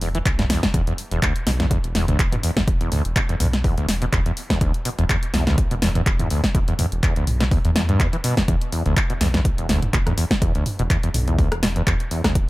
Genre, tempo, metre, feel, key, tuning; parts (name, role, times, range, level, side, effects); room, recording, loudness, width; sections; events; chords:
acid house; 124 BPM; 4/4; swing 55% on 16ths; A4 = 440 Hz
overdriven acid bass; riff; 0.0-12.3 s; D2 to E3; -23 LUFS; equal; tube saturation, wide subtle chorus, sidechain pumping, digital delay
round analog bass; bass; 0.0-12.5 s; E1 to E2; -24 LUFS; equal; sidechain pumping
punchy analog drum machine; drums; 0.0-12.5 s; handclaps, hi-hat, rim click, snare drum, toms; -24 LUFS; equal; overdrive
electronic kick drum; drums; 0.3-12.5 s; -21 LUFS; equal; overdrive
little or no reverb; -18 LUFS; side -19 dB against mid
0.0-12.5 A section
filter sweep on acid bass 0.0-12.5; drum fill 0.4-0.7
0.0 E5